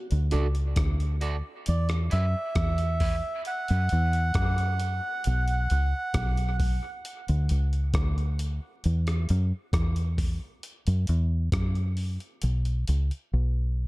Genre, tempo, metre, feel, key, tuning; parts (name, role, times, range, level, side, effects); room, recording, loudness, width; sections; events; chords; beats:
dub reggae; 67 BPM; 4/4; straight; A4 = 440 Hz
deep dub fingered electric bass; bass; 0.1-13.9 s; B1 to F#2; -24 LUFS; equal
breakbeat sampler-style drum kit; drums; 0.1-13.3 s; hi-hat, kick drum, rim click; -30 LUFS; equal
electric guitar at the edge of break-up; accompaniment; 0.3-3.2 s; B3 to D5; -37 LUFS; right 4 dB; high-pass filter, dub echo
melodica; melody; 1.7-6.6 s; D5 to F#5; -31 LUFS; right 2 dB; dub echo
digital ambience; dark, warm production; -24 LUFS; side -21 dB against mid
0.0-13.9 A section
drums muted 13.3-13.9
0.0 D; 1.7 Em; 3.5 Esus2; 5.2 B5; 7.0 N.C.; 8.8 Esus2; 12.4 Bsus2
0.77 1.66 2.56 | 3.46 4.35 5.25 6.14 | 7.04 7.94 8.84 9.73 | 10.63 11.53 12.42 13.32